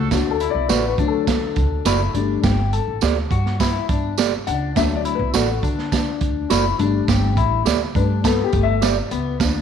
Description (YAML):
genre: uptempo 1960s-style soul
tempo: 103 BPM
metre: 4/4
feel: straight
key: unclear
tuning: A4 = 442 Hz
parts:
  - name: electric guitar through a small old amp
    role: riff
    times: 0.0-9.6 s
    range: A3 to A4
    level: -26 LUFS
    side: left 10 dB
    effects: wide subtle chorus
  - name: upright bass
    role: bass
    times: 0.0-9.6 s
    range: F#1 to D3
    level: -22 LUFS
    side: equal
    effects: none
  - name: dark upright piano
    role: accompaniment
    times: 0.1-8.9 s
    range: F#3 to F#5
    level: -23 LUFS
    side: left 10 dB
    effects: tube saturation
  - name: crunchy breakbeat drum kit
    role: drums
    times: 0.1-9.5 s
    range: hi-hat, kick drum, snare drum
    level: -22 LUFS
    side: right 4 dB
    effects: none
  - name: tambourine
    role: percussion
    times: 0.1-9.5 s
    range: none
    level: -31 LUFS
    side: right 11 dB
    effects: none
  - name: mellow electric guitar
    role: stabs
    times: 0.7-9.0 s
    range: F#4 to D5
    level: -26 LUFS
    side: right 12 dB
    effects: none
room: moderate echo chamber reverb, RT60 1.7 s, small room ambience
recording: 1960s-style stereo with parts hard left and right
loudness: -17 LUFS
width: side -8 dB against mid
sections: 0.1-9.6 A section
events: upright piano solo 0.1-9.6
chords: 0.1 D; 2.2 Gsus2; 4.8 D; 6.8 Gsus2